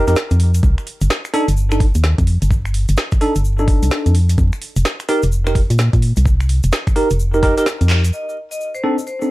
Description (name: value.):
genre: UK garage, two-step garage.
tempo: 128 BPM.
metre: 4/4.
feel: swing 63% on 16ths.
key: C dorian.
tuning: A4 = 439 Hz.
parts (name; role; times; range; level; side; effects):
bell-like tine electric piano; stabs; 0.0-9.3 s; C4 to Bb4; -19 LUFS; right 1 dB; lush chorus, low-pass filter, ping-pong delay.
organ-like FM bass; bass; 0.0-8.1 s; F1 to Bb2; -14 LUFS; equal; sidechain pumping.
garage drum kit; drums; 0.1-8.1 s; finger snaps, handclaps, hi-hat, snare drum; -23 LUFS; equal; overdrive, low-pass filter on hats, studio reverb, low-pass filter on snare.
egg shaker; percussion; 0.1-9.3 s; none; -36 LUFS; left 3 dB; none.
electronic kick drum; drums; 0.6-7.5 s; none; -16 LUFS; equal; overdrive, studio reverb.
vibraphone with hard mallets; melody; 8.1-9.3 s; C5 to Eb5; -24 LUFS; left 1 dB; ping-pong delay.
room: light reverb.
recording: dark, warm production, vinyl crackle.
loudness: -14 LUFS.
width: side -18 dB against mid.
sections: 0.0-8.1 A section; 8.1-9.3 B section.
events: drum fill 7.9; band accent 7.9.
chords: 0.0 N.C.; 0.6 Cm69 (rootless); 4.1 F9sus4; 8.1 Cm69.